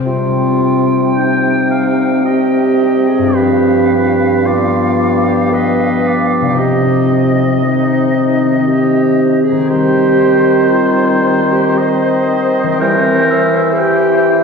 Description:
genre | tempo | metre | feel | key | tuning
classical, slow romantic movement for symphony orchestra | 56 BPM | 3/4 | uneven beats, rubato | C minor | A4 = 440 Hz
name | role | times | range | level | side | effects
concert harp | arpeggios | 0.0-14.4 s | G2 to C5 | -20 LUFS | left 3 dB | none
mellow clarinet | second line | 0.1-14.4 s | Eb4 to C5 | -16 LUFS | right 2 dB | none
silver concert flute | second line | 0.1-14.4 s | C5 to G5 | -23 LUFS | left 1 dB | none
clear bassoon | accompaniment | 0.1-14.4 s | G2 to E3 | -18 LUFS | right 2 dB | none
mellow French horn section | sustained chords | 0.1-13.2 s | Eb3 to C4 | -15 LUFS | left 2 dB | none
warm oboe | second line | 1.2-14.4 s | B4 to G5 | -20 LUFS | right 1 dB | none
room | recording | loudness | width
wet concert hall reverb, RT60 2.5 s | dark, warm production, lossy compression artefacts | -10 LUFS | side -5 dB against mid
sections
0.1-14.4 A section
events
none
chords
0.1 Cm; 3.3 G7; 6.6 Cm; 9.7 Cm/Eb; 12.8 C7/E

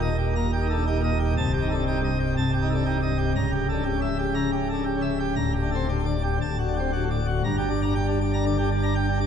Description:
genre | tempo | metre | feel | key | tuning
classical, organ toccata | 119 BPM | 4/4 | straight | G minor | A4 = 442 Hz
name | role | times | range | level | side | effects
pipe organ, plenum | solo | 0.0-9.3 s | C1 to Bb5 | -22 LUFS | equal | none
room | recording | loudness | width
wet church reverb, RT60 3.3 s | dark, warm production | -22 LUFS | side -8 dB against mid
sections
0.0-7.4 A section; 7.4-9.3 B section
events
none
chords
0.0 Eb; 1.4 Am7b5/C; 3.4 C#dim7; 5.4 Gm/D; 6.4 D; 7.4 Gm

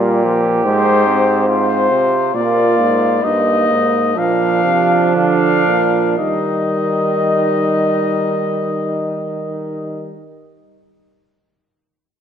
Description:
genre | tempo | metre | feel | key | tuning
classical, imitative canzona for brass ensemble | 56-75 BPM | 4/4 | straight | Eb major | A4 = 440 Hz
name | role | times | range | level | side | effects
dark trumpet | melody | 0.0-10.1 s | F4 to F5 | -19 LUFS | left 6 dB | none
mellow flugelhorn | second line | 0.0-10.1 s | D4 to G4 | -21 LUFS | right 4 dB | none
warm euphonium | accompaniment | 0.0-10.1 s | F3 to C4 | -19 LUFS | right 3 dB | none
bright bass trombone | bass | 0.0-10.2 s | G2 to Eb3 | -19 LUFS | right 1 dB | none
room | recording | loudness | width
wet scoring stage reverb, RT60 2.0 s | none | -13 LUFS | side -8 dB against mid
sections
0.0-6.2 A section; 6.2-10.5 B section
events
slowing down 0.0-6.2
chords
0.0 N.C.; 0.6 Fm/Ab; 2.3 Bbsus4; 4.2 Bb; 6.2 Eb

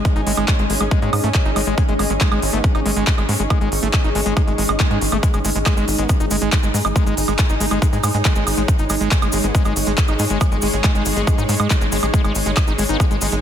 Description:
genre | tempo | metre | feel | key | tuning
psychedelic trance | 139 BPM | 4/4 | straight | unclear | A4 = 439 Hz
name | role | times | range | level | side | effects
swarming drone | sustained chords | 0.0-13.4 s | G#3 to G#4 | -26 LUFS | equal | built-in reverb, sidechain pumping
airy breathy pad | texture | 0.0-13.4 s | D#4 to C#6 | -27 LUFS | right 1 dB | chorus, sidechain pumping
big-room dance drum kit | drums | 0.1-13.4 s | handclaps, hi-hat, woodblock | -24 LUFS | right 2 dB | none
electronic kick drum | drums | 0.1-13.1 s | none | -18 LUFS | equal | none
overdriven acid bass | riff | 0.2-13.4 s | G#3 to D#4 | -24 LUFS | moving between left 5 dB and right 4 dB | distortion, auto-pan, sidechain pumping, ping-pong delay
tight sequencer bass | bass | 0.2-13.4 s | G#1 to G#2 | -22 LUFS | equal | none
formant-sweep wobble bass | second line | 0.7-13.0 s | G#3 to B3 | -36 LUFS | right 2 dB | none
swell | sound effects | 4.5-5.2 s | none | -30 LUFS | left 6 dB | none
cabasa | percussion | 5.2-13.4 s | none | -30 LUFS | left 1 dB | none
room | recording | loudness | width
little or no reverb | dense, heavily limited modern master | -15 LUFS | side -9 dB against mid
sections
0.0-13.4 A section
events
swell 4.5-5.2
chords
0.0 G#5

